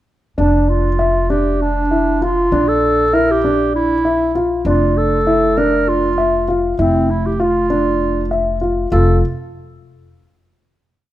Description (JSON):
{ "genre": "contemporary instrumental, chamber music in an uneven meter", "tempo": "197 BPM (eighths)", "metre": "7/8", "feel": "straight", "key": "unclear", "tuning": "A4 = 440 Hz", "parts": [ { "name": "mellow clarinet", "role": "melody", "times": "0.4-9.2 s", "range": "C4 to Bb4", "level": "-18 LUFS", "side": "right 2 dB", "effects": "none" }, { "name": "dark grand piano", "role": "arpeggios", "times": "0.4-9.2 s", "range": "D4 to E5", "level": "-17 LUFS", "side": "left 1 dB", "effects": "none" }, { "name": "upright bass", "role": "bass", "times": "0.4-9.2 s", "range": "F1 to Bb1", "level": "-20 LUFS", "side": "equal", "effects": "none" } ], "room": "light reverb", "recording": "none", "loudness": "-13 LUFS", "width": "side -14 dB against mid", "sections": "0.4-8.9 A section; 8.9-11.1 final chord", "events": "none", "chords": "0.4 Dmadd9/F; 2.5 Bb; 4.7 Dmadd9/F; 8.9 N.C." }